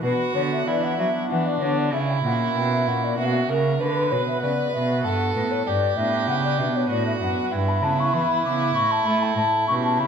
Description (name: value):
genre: classical, baroque-style sonata movement with continuo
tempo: 97 BPM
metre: 3/4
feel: straight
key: B minor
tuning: A4 = 441 Hz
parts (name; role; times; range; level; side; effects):
- mellow hollow baroque flute; melody; 0.0-10.1 s; B4 to D6; -25 LUFS; left 6 dB; none
- warm violin; second line; 0.0-10.1 s; D4 to B4; -25 LUFS; right 6 dB; none
- pipe organ, cornet; accompaniment; 0.0-10.1 s; F#2 to B4; -28 LUFS; right 1 dB; none
- rich cello; bass; 0.0-10.1 s; F#2 to A3; -26 LUFS; right 2 dB; none
room: wet recital hall reverb, RT60 1.6 s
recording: none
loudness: -20 LUFS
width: side -7 dB against mid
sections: 0.0-10.1 A section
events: none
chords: 0.0 Bm; 1.9 F#7; 3.8 Bm; 5.7 G; 7.5 Em/G; 8.7 A5; 9.4 A7